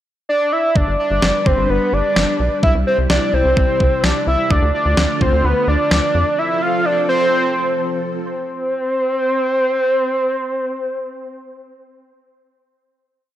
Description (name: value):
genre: synth-pop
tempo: 128 BPM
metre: 4/4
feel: straight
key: unclear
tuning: A4 = 440 Hz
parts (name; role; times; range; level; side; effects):
- fat analog lead; melody; 0.3-12.1 s; B4 to F5; -17 LUFS; equal; none
- string machine, full ensemble; sustained chords; 1.0-8.2 s; C3 to B4; -24 LUFS; equal; ensemble chorus
- rubbery square bass; bass; 0.8-6.2 s; G1 to F2; -19 LUFS; equal; none
- clean 12-bit digital drum machine; drums; 0.8-6.0 s; kick drum, snare drum; -18 LUFS; equal; none
room: moderate lush hall reverb, RT60 1.5 s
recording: none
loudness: -15 LUFS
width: side -12 dB against mid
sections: 0.0-0.8 pickup bar; 0.8-8.3 verse; 8.3-12.0 final note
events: none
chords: 0.0 N.C.; 0.8 G; 2.6 C; 4.5 Dm; 6.1 F; 8.3 N.C.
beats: 0.29 | 0.76 1.22 1.69 2.16 | 2.63 3.10 3.57 4.04 | 4.51 4.97 5.44 5.91 | 6.38 6.85 7.32 7.79 | 8.26 8.72 9.19 9.66 | 10.13 10.60 11.07 11.54